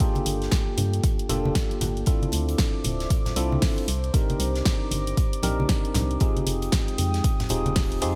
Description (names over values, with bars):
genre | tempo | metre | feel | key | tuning
deep house | 116 BPM | 4/4 | swing 61% on 16ths | unclear | A4 = 441 Hz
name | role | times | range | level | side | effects
dark analog pad | sustained chords | 0.0-8.2 s | Ab3 to Eb6 | -39 LUFS | equal | chorus, phaser, sidechain pumping
tine electric piano | stabs | 0.0-8.2 s | Bb3 to Bb4 | -32 LUFS | equal | analog chorus, sidechain pumping, delay
deep house drum kit | drums | 0.0-8.1 s | hi-hat, snare drum | -32 LUFS | equal | none
electronic kick drum | drums | 0.0-7.9 s | none | -26 LUFS | equal | none
modern studio drum kit | drums | 0.0-7.9 s | hi-hat, snare drum | -41 LUFS | equal | none
congas | percussion | 0.2-7.7 s | none | -34 LUFS | equal | none
organ-like FM bass | bass | 0.3-8.2 s | D1 to G2 | -29 LUFS | equal | sidechain pumping
room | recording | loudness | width
light reverb, small room ambience | bright 1980s-style digital production | -24 LUFS | mono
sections
0.0-8.2 A section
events
none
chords
0.0 Gm9; 2.1 Dm9; 3.9 Cm9; 6.2 Fm9